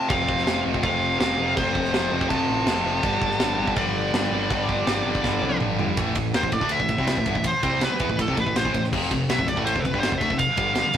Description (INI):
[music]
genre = heavy metal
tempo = 163 BPM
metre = 4/4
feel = straight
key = A minor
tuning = A4 = 444 Hz
[part]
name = high-gain lead guitar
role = melody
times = 0.0-11.0 s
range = A4 to A5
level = -25 LUFS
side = right 1 dB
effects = distortion
[part]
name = high-gain distorted guitar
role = riff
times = 0.0-11.0 s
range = F2 to D4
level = -27 LUFS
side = left 4 dB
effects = distortion
[part]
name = cranked stack guitar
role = riff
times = 0.1-11.0 s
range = F2 to D4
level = -35 LUFS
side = right 2 dB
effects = none
[part]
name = scooped high-gain guitar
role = riff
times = 0.1-11.0 s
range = F2 to D4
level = -30 LUFS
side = right 6 dB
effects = distortion
[part]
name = growling picked electric bass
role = bass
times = 0.1-11.0 s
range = F1 to E2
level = -30 LUFS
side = right 1 dB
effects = overdrive
[part]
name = modern studio drum kit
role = drums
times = 0.1-11.0 s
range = crash cymbal, kick drum, ride cymbal, snare drum, toms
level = -26 LUFS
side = right 1 dB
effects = none
[sound]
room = moderate studio reverb, RT60 0.6 s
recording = rough rehearsal-room recording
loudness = -20 LUFS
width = side -9 dB against mid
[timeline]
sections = 0.0-6.0 A section; 6.0-11.0 B section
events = drum fill 5.2-6.0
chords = 0.0 F; 3.0 G5; 6.0 Am; 8.9 F5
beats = | 0.10 0.47 0.83 1.20 | 1.56 1.93 2.30 2.67 | 3.03 3.40 3.77 4.13 | 4.50 4.87 5.24 5.61 | 5.97 6.34 6.71 7.08 | 7.45 7.82 8.19 8.56 | 8.93 9.29 9.66 10.03 | 10.40 10.77